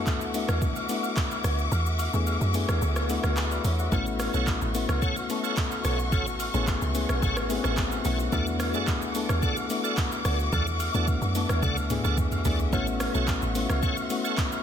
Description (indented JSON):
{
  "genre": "amapiano",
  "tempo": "109 BPM",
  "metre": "4/4",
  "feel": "straight",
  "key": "A major",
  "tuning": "A4 = 436 Hz",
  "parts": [
    { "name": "soft electric-piano-like synth keys", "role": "accompaniment", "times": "0.0-14.6 s", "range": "A3 to F#5", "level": "-30 LUFS", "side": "left 4 dB", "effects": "chorus" },
    { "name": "warm studio string section", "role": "sustained chords", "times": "0.0-14.6 s", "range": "F#4 to D6", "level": "-34 LUFS", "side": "left 3 dB", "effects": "none" },
    { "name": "deep log drum bass", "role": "bass", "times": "0.0-13.8 s", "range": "A1 to F#2", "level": "-28 LUFS", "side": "right 1 dB", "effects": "none" },
    { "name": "smooth R&B drum kit", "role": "drums", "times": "0.1-14.6 s", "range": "handclaps, hi-hat, kick drum, rim click, shaker, toms", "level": "-29 LUFS", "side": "right 1 dB", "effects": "none" },
    { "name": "agogo bells", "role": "percussion", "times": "0.1-14.6 s", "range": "none", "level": "-39 LUFS", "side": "right 3 dB", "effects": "none" },
    { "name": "bright tonewheel organ", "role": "stabs", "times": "3.9-14.4 s", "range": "A4 to F#5", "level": "-34 LUFS", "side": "right 2 dB", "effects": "overdrive, chorus vibrato, slow rotary speaker, digital delay" }
  ],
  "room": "digital ambience",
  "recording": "dense, heavily limited modern master",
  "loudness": "-24 LUFS",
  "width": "side -9 dB against mid",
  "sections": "0.0-14.6 A section",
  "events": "kick muted 1.7-3.9; drum fill 11.6-12.7",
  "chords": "0.0 E9sus4; 3.9 A6; 8.3 E9sus4; 12.7 A6",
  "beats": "0.07 0.62 1.17 | 1.72 2.27 2.82 3.37 | 3.92 4.47 5.02 5.57 | 6.12 6.67 7.22 7.77 | 8.32 8.87 9.43 9.97 | 10.53 11.08 11.63 12.18 | 12.73 13.28 13.83 14.38"
}